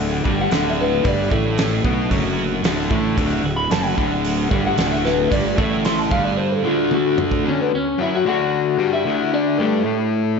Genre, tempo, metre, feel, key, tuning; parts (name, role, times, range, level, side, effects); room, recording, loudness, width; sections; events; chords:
quiet-loud alternative rock; 112 BPM; 4/4; straight; D major; A4 = 440 Hz
electric guitar through a small old amp; melody; 0.0-10.4 s; A3 to C6; -21 LUFS; left 1 dB; slapback echo
twelve-string electric guitar; arpeggios; 0.0-7.5 s; D2 to F#4; -29 LUFS; right 1 dB
overdriven semi-hollow guitar; riff; 0.0-10.4 s; D2 to B3; -22 LUFS; left 8 dB; slapback echo
thick fuzz guitar; riff; 0.0-7.4 s; D2 to B3; -24 LUFS; right 12 dB; distortion, slapback echo
fuzz fingered electric bass; bass; 0.0-6.4 s; D1 to B1; -26 LUFS; right 1 dB; overdrive
loose indie drum kit; drums; 0.3-7.4 s; hi-hat, kick drum, snare drum, toms; -23 LUFS; right 1 dB
moderate scoring stage reverb, RT60 1.8 s, small room reverb; big arena sound, nothing above 7.7 kHz; -17 LUFS; side -5 dB against mid
0.0-7.4 A section; 7.4-10.4 B section
clean electric guitar solo 0.0-7.4; drum fill 6.9-7.4
0.0 D